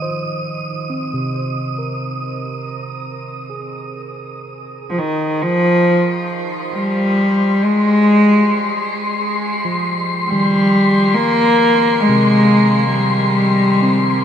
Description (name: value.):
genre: ambient.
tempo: 68 BPM.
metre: 3/4.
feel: straight.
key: Ab major.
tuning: A4 = 440 Hz.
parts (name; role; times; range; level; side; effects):
tine electric piano; arpeggios; 0.0-14.2 s; C3 to Eb5; -23 LUFS; right 1 dB; diffuse ambient delay.
wind-like tuned noise texture; texture; 0.0-14.2 s; C6 to Eb6; -24 LUFS; left 2 dB; built-in reverb.
rich cello; melody; 4.9-14.2 s; Eb3 to Bb3; -13 LUFS; equal; diffuse ambient delay.
room: wet shimmer reverb, RT60 8.9 s.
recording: none.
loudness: -13 LUFS.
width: side -9 dB against mid.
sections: 0.0-5.0 A section; 5.0-14.2 B section.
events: fade-out on tine electric piano 0.0-5.0; fade-out on synth texture 0.0-5.0; fade-in on tine electric piano 5.0-14.2.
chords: 0.0 Cm7; 5.0 Ab; 10.3 Cm.